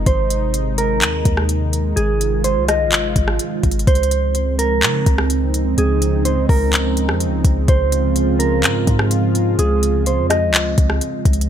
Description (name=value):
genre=hip hop, atmospheric cloud-rap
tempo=126 BPM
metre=4/4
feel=half-time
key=unclear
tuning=A4 = 440 Hz
part: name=dark analog pad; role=sustained chords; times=0.0-11.5 s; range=C3 to F4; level=-22 LUFS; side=right 2 dB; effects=chorus, sidechain pumping
part: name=warm 808-style bass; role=bass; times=0.0-11.5 s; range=Ab1 to Db3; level=-19 LUFS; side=left 1 dB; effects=none
part: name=mellow electric guitar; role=melody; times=0.1-11.0 s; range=Ab4 to Eb5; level=-21 LUFS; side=right 2 dB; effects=low-pass filter, ping-pong delay
part: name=smooth R&B drum kit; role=drums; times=0.1-11.5 s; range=handclaps, hi-hat, kick drum, rim click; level=-18 LUFS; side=left 1 dB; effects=none
room=light reverb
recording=bright 1980s-style digital production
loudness=-14 LUFS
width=side -9 dB against mid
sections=0.0-11.5 A section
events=none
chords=0.1 Ab; 3.9 Dbmaj9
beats=| 0.06 0.54 1.02 1.49 | 1.97 2.44 2.92 3.40 | 3.87 4.35 4.83 5.30 | 5.78 6.25 6.73 7.21 | 7.68 8.16 8.63 9.11 | 9.59 10.06 10.54 11.02